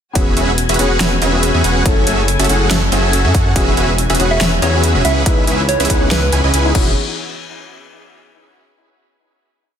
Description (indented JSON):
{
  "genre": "future bass",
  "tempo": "141 BPM",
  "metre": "4/4",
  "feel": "half-time",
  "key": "E major",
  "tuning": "A4 = 439 Hz",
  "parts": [
    { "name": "felt-muted upright piano", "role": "accompaniment", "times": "0.1-7.0 s", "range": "A3 to B4", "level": "-22 LUFS", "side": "left 4 dB", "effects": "sidechain pumping, tape echo" },
    { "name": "dark studio string section", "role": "sustained chords", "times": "0.2-6.9 s", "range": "C#3 to G#5", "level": "-26 LUFS", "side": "left 2 dB", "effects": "sidechain pumping" },
    { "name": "dense compressed supersaw", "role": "riff", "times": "0.2-6.9 s", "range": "C#4 to G#5", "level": "-17 LUFS", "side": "right 1 dB", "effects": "vintage 12-bit sampler grit, sidechain pumping, tape echo" },
    { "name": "wide detuned saw bass", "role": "bass", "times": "0.2-6.9 s", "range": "E1 to F#2", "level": "-17 LUFS", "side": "equal", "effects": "chorus, sidechain pumping" },
    { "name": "big-room dance drum kit", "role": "drums", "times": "0.2-6.8 s", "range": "crash cymbal, hi-hat, snare drum", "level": "-20 LUFS", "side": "equal", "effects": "overdrive, studio reverb" },
    { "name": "electronic kick drum", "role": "drums", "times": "0.2-6.8 s", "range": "none", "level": "-16 LUFS", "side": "equal", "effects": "overdrive, studio reverb" },
    { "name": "soft struck synth lead", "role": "melody", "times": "4.3-6.3 s", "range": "B4 to E5", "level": "-21 LUFS", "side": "right 2 dB", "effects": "chorus, sidechain pumping, ping-pong delay" }
  ],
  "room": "light reverb, digital ambience",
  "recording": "dense, heavily limited modern master",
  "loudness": "-12 LUFS",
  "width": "side -8 dB against mid",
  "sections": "0.2-7.0 drop; 7.0-8.7 final hit",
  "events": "drop 0.2-7.0",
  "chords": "0.2 E69; 1.9 F#m9; 3.6 E69; 5.0 C#m7; 6.8 E69; 7.0 N.C."
}